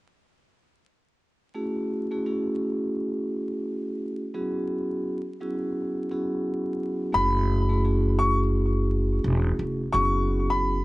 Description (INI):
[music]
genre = hip hop, boom-bap hip-hop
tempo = 86 BPM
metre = 4/4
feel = swing 58% on 16ths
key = F# minor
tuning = A4 = 443 Hz
[part]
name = vibraphone with soft mallets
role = accompaniment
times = 1.5-10.8 s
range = F#3 to G#4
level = -27 LUFS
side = equal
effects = cassette tape
[part]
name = clear upright piano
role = melody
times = 7.1-10.8 s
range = B5 to C#6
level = -26 LUFS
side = left 1 dB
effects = ping-pong delay
[part]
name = upright bass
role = bass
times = 7.1-10.8 s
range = E1 to F#1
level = -24 LUFS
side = equal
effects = none
[sound]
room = light reverb, small room ambience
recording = vinyl crackle, nothing above 10.7 kHz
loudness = -24 LUFS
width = side -20 dB against mid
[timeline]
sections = 1.6-7.1 A section; 7.1-10.8 B section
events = none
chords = 1.6 F#m9; 4.4 E69/F#; 7.1 F#m9; 9.9 E69/F#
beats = | 1.57 2.26 2.96 3.66 | 4.36 5.05 5.75 6.45 | 7.15 7.85 8.54 9.24 | 9.94 10.64